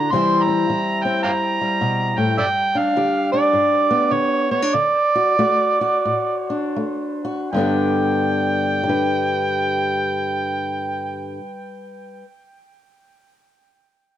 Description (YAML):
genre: acoustic country blues, solo or duo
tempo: 75-106 BPM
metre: 4/4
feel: swing 63% on 8ths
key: G major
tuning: A4 = 441 Hz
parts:
  - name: overdriven harmonica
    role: melody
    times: 0.0-11.3 s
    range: C#5 to C6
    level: -20 LUFS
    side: right 2 dB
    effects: plate reverb, analog delay
  - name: fingerpicked old ladder-braced acoustic guitar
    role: accompaniment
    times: 0.0-12.3 s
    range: G2 to B4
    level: -21 LUFS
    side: left 2 dB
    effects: none
room: moderate studio reverb, RT60 0.8 s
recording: dark, warm production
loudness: -17 LUFS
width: side -11 dB against mid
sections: 0.0-7.5 A section; 7.5-10.7 B section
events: slowing down 2.4-7.5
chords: 0.1 C; 2.4 G; 4.7 D; 7.5 G